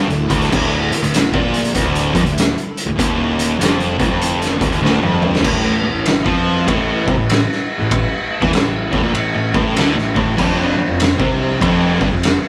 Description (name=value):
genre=stoner and doom metal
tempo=97 BPM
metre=4/4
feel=swing 64% on 8ths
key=unclear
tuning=A4 = 440 Hz
part: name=phased string machine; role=sustained chords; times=0.0-12.5 s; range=D3 to B4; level=-30 LUFS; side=equal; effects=none
part: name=cranked stack guitar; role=riff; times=0.0-12.3 s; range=D2 to F3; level=-24 LUFS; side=equal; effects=overdrive
part: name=thick fuzz guitar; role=riff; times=0.0-12.3 s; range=D2 to F3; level=-24 LUFS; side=equal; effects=distortion
part: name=thick fuzz guitar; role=riff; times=0.0-12.3 s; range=D2 to F3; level=-27 LUFS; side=equal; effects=none
part: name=fuzz picked electric bass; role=bass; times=0.0-12.4 s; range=D1 to F2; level=-26 LUFS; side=equal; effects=overdrive
part: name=oversized low-tuned drum kit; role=drums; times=0.1-12.4 s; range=crash cymbal, hi-hat, kick drum, ride cymbal, snare drum, toms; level=-20 LUFS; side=equal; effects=none
room=light reverb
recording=band playing live in one room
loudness=-16 LUFS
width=mono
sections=0.0-5.4 A section; 5.4-12.5 B section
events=drum fill 4.8-5.4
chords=0.0 Dm; 5.4 A5; 10.4 F5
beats=| 0.53 1.14 1.75 2.37 | 2.98 3.60 4.21 4.83 | 5.45 6.06 6.68 7.30 | 7.91 8.53 9.15 9.76 | 10.38 10.99 11.61 12.22